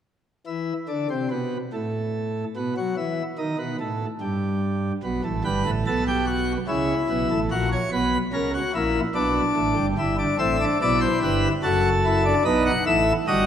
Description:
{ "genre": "classical, baroque-style 3-part fugue for pipe organ", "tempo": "73 BPM", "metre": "3/4", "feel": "straight", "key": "unclear", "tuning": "A4 = 440 Hz", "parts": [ { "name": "pipe organ, plenum", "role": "solo", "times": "0.5-13.5 s", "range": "F#1 to F#5", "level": "-21 LUFS", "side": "equal", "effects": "none" } ], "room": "wet concert hall reverb, RT60 2.1 s", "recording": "none", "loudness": "-21 LUFS", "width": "side -9 dB against mid", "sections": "0.1-13.5 A section", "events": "none", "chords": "0.1 N.C.; 5.0 B5; 6.7 Aadd9; 7.5 F#/A#; 9.1 Bm; 10.0 Em/G; 11.6 F#m7; 12.4 B" }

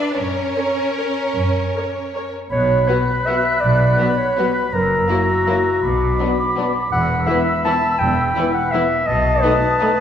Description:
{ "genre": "classical, orchestral ballroom waltz", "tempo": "142-178 BPM", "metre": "3/4", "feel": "rubato", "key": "B minor", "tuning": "A4 = 441 Hz", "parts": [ { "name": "warm symphonic violin section", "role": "melody", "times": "0.0-9.9 s", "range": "D4 to D5", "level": "-28 LUFS", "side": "left 2 dB", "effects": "none" }, { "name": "rich studio violin section", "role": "second line", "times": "0.0-9.9 s", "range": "A#3 to B4", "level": "-29 LUFS", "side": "left 2 dB", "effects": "none" }, { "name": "clear symphonic cello section", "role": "bass", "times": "0.0-9.4 s", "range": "E2 to D4", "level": "-26 LUFS", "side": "right 2 dB", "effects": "none" }, { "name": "warm symphonic double bass section", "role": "bass", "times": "0.2-9.4 s", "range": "E1 to F#2", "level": "-23 LUFS", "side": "right 1 dB", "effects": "none" }, { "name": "warm symphonic viola section", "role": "accompaniment", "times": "0.6-9.9 s", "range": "E3 to C#5", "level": "-29 LUFS", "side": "right 1 dB", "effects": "none" }, { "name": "large flute ensemble", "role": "second line", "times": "2.5-10.0 s", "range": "D6 to F#6", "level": "-25 LUFS", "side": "equal", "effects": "none" }, { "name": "mellow clarinet", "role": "second line", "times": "2.5-10.0 s", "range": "F#4 to A5", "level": "-19 LUFS", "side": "left 1 dB", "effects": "none" }, { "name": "warm oboe", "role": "second line", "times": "2.5-10.0 s", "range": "A5 to B5", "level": "-24 LUFS", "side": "left 1 dB", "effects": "none" }, { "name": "mellow French horn section", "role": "sustained chords", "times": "2.9-9.9 s", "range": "A3 to F#4", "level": "-26 LUFS", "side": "left 4 dB", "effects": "none" } ], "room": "wet recital hall reverb, RT60 1.6 s", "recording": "recorded in a church or concert hall", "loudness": "-16 LUFS", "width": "side -9 dB against mid", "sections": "0.0-2.5 A section; 2.5-10.0 B section", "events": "none", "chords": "0.2 F#; 2.5 Bm; 4.7 F#7; 5.8 Bm; 6.9 Em; 9.1 B7" }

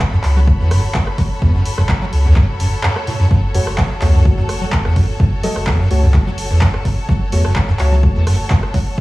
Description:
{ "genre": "acid house", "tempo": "127 BPM", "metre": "4/4", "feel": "straight", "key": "F# minor", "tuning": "A4 = 441 Hz", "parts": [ { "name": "warm sub bass", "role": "bass", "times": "0.0-9.0 s", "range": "F#1 to C#2", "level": "-17 LUFS", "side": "equal", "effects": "sidechain pumping" }, { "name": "electronic kick drum", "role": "drums", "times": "0.0-9.0 s", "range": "none", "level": "-16 LUFS", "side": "equal", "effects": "overdrive" }, { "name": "punchy analog drum machine", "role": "drums", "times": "0.0-8.8 s", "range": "handclaps, hi-hat, rim click", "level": "-24 LUFS", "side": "equal", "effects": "overdrive" }, { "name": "clear studio string section", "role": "texture", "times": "0.0-9.0 s", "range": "F#4 to B5", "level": "-26 LUFS", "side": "left 1 dB", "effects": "sidechain pumping" }, { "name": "acid bass, square", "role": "riff", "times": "0.1-9.0 s", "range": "E2 to F#3", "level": "-16 LUFS", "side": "equal", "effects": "overdrive, ensemble chorus, tape echo" }, { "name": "deep mellow chord stab", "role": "stabs", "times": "3.5-9.0 s", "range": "A3 to D#5", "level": "-26 LUFS", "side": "left 1 dB", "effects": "chorus, tape echo" }, { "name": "soft struck synth lead", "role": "melody", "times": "5.4-5.8 s", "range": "A4", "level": "-28 LUFS", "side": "left 1 dB", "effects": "chorus, analog delay" } ], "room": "digital ambience", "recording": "dry, gritty hardware recording, cassette tape, small room ambience", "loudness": "-13 LUFS", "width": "side -19 dB against mid", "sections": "0.0-9.0 A section", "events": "none", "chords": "0.0 F#m" }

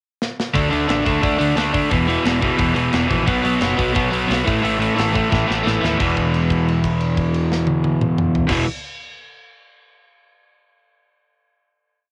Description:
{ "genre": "punk rock", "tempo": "177 BPM", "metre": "4/4", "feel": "straight", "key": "unclear", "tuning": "A4 = 440 Hz", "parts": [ { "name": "tight metal drum kit", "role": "drums", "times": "0.2-8.6 s", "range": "crash cymbal, hi-hat, kick drum, snare drum, toms", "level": "-27 LUFS", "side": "equal", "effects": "cassette tape" }, { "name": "overdriven electric guitar", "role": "riff", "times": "0.5-8.7 s", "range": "E2 to D4", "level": "-23 LUFS", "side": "equal", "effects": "none" }, { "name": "overdriven semi-hollow guitar", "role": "riff", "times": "0.5-8.7 s", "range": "E2 to D4", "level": "-22 LUFS", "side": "equal", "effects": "none" }, { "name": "growling picked electric bass", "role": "bass", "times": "0.6-8.6 s", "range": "E1 to D#2", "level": "-27 LUFS", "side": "equal", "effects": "overdrive" } ], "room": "little or no reverb", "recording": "home recording on cassette", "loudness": "-19 LUFS", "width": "mono", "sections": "0.0-0.6 pickup bar; 0.6-6.0 verse; 6.0-8.7 final chord", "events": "drum fill 0.2-0.6, 5.3-6.0; held note 6.0-8.5", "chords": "0.0 N.C.; 0.6 D5; 1.9 E5; 3.3 B5; 4.5 A5; 6.0 E5" }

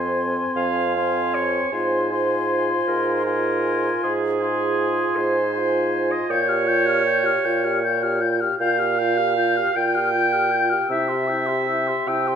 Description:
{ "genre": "classical, slow romantic movement for wind quintet", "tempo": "52 BPM (dotted quarters)", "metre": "12/8", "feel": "rubato", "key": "F minor", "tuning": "A4 = 440 Hz", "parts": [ { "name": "mellow hollow silver concert flute", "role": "melody", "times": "0.0-12.4 s", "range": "C6 to G6", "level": "-25 LUFS", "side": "left 6 dB", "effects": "none" }, { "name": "warm oboe", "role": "second line", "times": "0.0-12.4 s", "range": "E5 to Ab5", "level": "-29 LUFS", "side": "left 5 dB", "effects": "none" }, { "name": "clear clarinet", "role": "accompaniment", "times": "0.0-12.4 s", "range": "Ab4 to G5", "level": "-24 LUFS", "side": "right 5 dB", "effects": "none" }, { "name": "warm French horn", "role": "accompaniment", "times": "0.0-12.4 s", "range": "C4 to G4", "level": "-28 LUFS", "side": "left 1 dB", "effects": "none" }, { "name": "warm bassoon", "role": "bass", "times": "0.0-12.4 s", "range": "F2 to C3", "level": "-25 LUFS", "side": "right 2 dB", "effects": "none" } ], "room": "moderate scoring stage reverb, RT60 1.9 s", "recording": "none", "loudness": "-19 LUFS", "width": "side -8 dB against mid", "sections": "0.0-12.4 A section", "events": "none", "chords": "0.0 Fm; 1.7 Fm/Ab; 6.3 Gm7b5/Bb; 10.9 C" }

